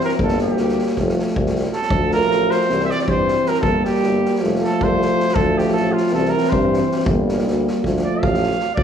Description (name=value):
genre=balkan folk, Balkan brass band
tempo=315 BPM (eighths)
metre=9/8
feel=straight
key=D minor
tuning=A4 = 441 Hz
part: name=clear trumpet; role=second line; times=0.0-8.8 s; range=F4 to F5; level=-21 LUFS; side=right 1 dB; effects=none
part: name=dark French horn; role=accompaniment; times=0.0-8.8 s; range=A3 to C4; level=-23 LUFS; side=left 3 dB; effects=none
part: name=warm euphonium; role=accompaniment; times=0.0-8.8 s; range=E3 to G3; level=-23 LUFS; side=right 3 dB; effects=none
part: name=street-band drum kit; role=percussion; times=0.0-8.8 s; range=kick drum, snare drum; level=-25 LUFS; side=equal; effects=none
part: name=clear tuba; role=bass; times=0.2-8.8 s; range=F1 to G2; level=-23 LUFS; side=left 1 dB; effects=none
room=wet recital hall reverb, RT60 1.3 s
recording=recorded in a church or concert hall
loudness=-16 LUFS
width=side -8 dB against mid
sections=0.0-8.8 A section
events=trumpet solo 0.0-8.8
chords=0.2 Gm; 1.0 F; 1.9 Dm; 2.7 C; 3.6 Gm; 4.4 F; 5.3 Dm; 6.1 C; 7.1 Gm; 7.8 Dm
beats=0.01 | 0.20 0.39 0.58 0.77 0.96 1.15 1.34 1.53 1.72 | 1.92 2.11 2.30 2.49 2.68 2.87 3.06 3.25 3.44 | 3.63 3.82 4.01 4.20 4.39 4.58 4.78 4.97 5.16 | 5.35 5.54 5.73 5.92 6.11 6.30 6.49 6.68 6.87 | 7.06 7.25 7.44 7.63 7.82 8.01 8.20 8.39 8.58 | 8.77